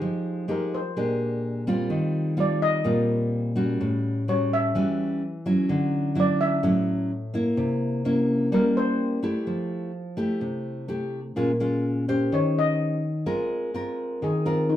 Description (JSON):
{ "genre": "bossa nova", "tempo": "127 BPM", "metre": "4/4", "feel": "straight", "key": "unclear", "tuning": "A4 = 442 Hz", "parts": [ { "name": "nylon-string guitar", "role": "accompaniment", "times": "0.0-14.8 s", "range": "A2 to C5", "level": "-23 LUFS", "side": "equal", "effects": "none" }, { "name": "steel pan", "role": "melody", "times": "0.5-9.4, 12.3-14.8 s", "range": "C4 to E5", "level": "-27 LUFS", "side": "left 2 dB", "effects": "none" } ], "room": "wet studio reverb, RT60 0.5 s", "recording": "band playing live in one room", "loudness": "-23 LUFS", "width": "side -12 dB against mid", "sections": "0.0-9.5 A section; 9.5-14.8 A section", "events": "steel pan solo 0.0-14.8", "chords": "0.0 Fm9; 1.0 Bb13; 1.9 Eb69; 3.8 A6; 5.7 Dmaj9; 7.6 C7b9; 9.5 Fmaj9; 11.4 Bbm7; 12.3 Eb6; 13.3 Ab69" }